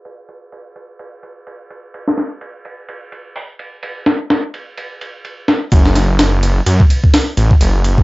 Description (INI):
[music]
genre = breakbeat, breaks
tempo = 127 BPM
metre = 4/4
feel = swing 58% on 16ths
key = unclear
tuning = A4 = 440 Hz
[part]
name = breakbeat sampler-style drum kit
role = drums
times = 0.1-8.0 s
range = hi-hat, kick drum, ride cymbal, snare drum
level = -15 LUFS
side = equal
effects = low-pass filter on snare, low-pass filter on cymbals, low-pass filter on kick, low-pass filter on hats, low-pass filter on room
[part]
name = detuned saw bass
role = bass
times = 5.7-8.0 s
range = F#1 to F#2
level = -13 LUFS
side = equal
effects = none
[sound]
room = light reverb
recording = dry, gritty hardware recording, low-pass filter, nothing above 7.7 kHz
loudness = -11 LUFS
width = side -22 dB against mid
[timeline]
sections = 0.0-5.7 A section; 5.7-8.0 B section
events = filter sweep 0.0-5.7; drop 5.7-8.0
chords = none